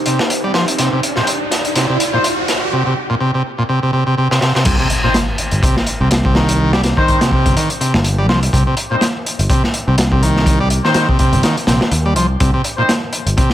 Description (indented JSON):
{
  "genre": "breakbeat, breaks",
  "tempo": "124 BPM",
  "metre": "4/4",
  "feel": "swing 56% on 16ths",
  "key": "C minor",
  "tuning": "A4 = 440 Hz",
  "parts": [
    { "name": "dark analog pad", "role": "sustained chords", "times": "0.0-2.7 s", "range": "Eb4 to D5", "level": "-24 LUFS", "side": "right 1 dB", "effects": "chorus, phaser, sidechain pumping" },
    { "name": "riser and impact", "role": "sound effects", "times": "0.0-6.6 s", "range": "none", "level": "-22 LUFS", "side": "right 1 dB", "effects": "none" },
    { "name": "combo organ", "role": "riff", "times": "0.1-13.5 s", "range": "Bb2 to G3", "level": "-17 LUFS", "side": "equal", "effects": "spring reverb, low-pass filter, ping-pong delay" },
    { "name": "crunchy breakbeat drum kit", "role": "drums", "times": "0.1-13.5 s", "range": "crash cymbal, hi-hat, kick drum, snare drum", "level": "-16 LUFS", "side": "equal", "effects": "high-pass filter on kick, high-pass filter on hats, high-pass filter on cymbals, high-pass filter on snare, high-pass filter on room" },
    { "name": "clear brass ensemble", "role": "stabs", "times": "1.2-12.9 s", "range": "G3 to C5", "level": "-21 LUFS", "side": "left 2 dB", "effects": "ping-pong delay" },
    { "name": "overdriven picked electric bass", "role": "bass", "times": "4.7-13.3 s", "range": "G1 to Eb2", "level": "-16 LUFS", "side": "equal", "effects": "none" }
  ],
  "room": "light reverb",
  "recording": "none",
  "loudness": "-12 LUFS",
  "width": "side -12 dB against mid",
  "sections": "0.0-4.7 A section; 4.7-13.5 B section",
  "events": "build-up 0.0-4.7; riser 0.0-2.7; drum fill 0.8-2.7, 4.3-4.7; drop 4.7-13.5; impact 4.7-6.6",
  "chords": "0.0 Cm"
}